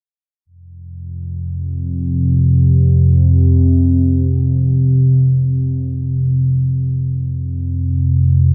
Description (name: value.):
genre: ambient.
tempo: free time.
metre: none.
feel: none.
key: unclear.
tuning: A4 = 440 Hz.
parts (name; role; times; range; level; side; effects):
analog drone; solo; 1.0-8.5 s; F2 to C3; -15 LUFS; equal; chorus.
room: wet cathedral reverb, RT60 6.5 s.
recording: dark, warm production.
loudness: -15 LUFS.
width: mono.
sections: 0.5-8.5 A section.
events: none.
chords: 0.5 F5.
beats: free time.